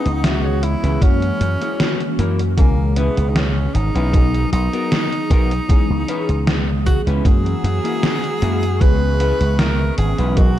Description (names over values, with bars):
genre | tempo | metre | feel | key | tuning
vaporwave | 77 BPM | 4/4 | straight | C# dorian | A4 = 440 Hz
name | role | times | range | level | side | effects
clear tenor saxophone | melody | 0.0-10.6 s | A#3 to B4 | -24 LUFS | right 1 dB | tape echo
FM electric piano with soft pad layer | accompaniment | 0.0-10.6 s | B2 to D#5 | -24 LUFS | left 1 dB | phaser, lush chorus
clean electric guitar | riff | 0.0-10.4 s | A#3 to F#5 | -28 LUFS | left 3 dB | lush chorus
slap bass with an envelope filter | bass | 0.1-10.6 s | G#1 to F#2 | -18 LUFS | equal | none
gated 80s digital drum machine | drums | 0.1-10.5 s | hi-hat, snare drum | -22 LUFS | equal | gated reverb, gated reverb snare
electronic kick drum | drums | 1.0-10.5 s | none | -14 LUFS | equal | none
warm chamber string section | sustained chords | 7.2-10.6 s | G#4 to E6 | -34 LUFS | left 2 dB | none
room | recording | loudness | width
light reverb | dark, warm production | -15 LUFS | side -12 dB against mid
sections
0.0-10.6 A section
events
clean electric guitar fill 0.0-1.0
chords
0.0 C#m7; 1.0 F#9; 2.6 C#m7; 4.1 G#m9/B; 5.7 C#m7; 7.3 F#9; 8.8 C#m7